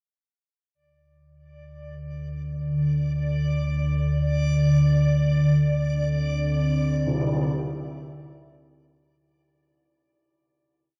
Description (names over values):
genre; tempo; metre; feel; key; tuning
dark ambient drone; free time; none; none; unclear; A4 = 440 Hz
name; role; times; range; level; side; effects
deep rumbling drone; drone; 2.0-9.3 s; D2 to D3; -25 LUFS; equal; built-in reverb, phaser
backwards swelling texture; texture; 1.8-9.2 s; D5; -36 LUFS; equal; built-in reverb
deep dark ambient pad; sustained chords; 5.9-9.2 s; D3 to E5; -35 LUFS; equal; chorus, built-in reverb
tam-tam; percussion; 7.1-7.3 s; none; -32 LUFS; equal; low-pass filter on cymbals
room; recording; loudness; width
wet cathedral reverb, RT60 6.4 s; dark, warm production; -23 LUFS; mono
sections
0.8-9.2 A section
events
fade-in on synth drone 0.8-9.2; fade-in on synth texture 0.8-9.2; fade-in on drum 0.8-9.2; fade-out 5.0-9.2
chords
0.8 N.C.; 5.0 C/D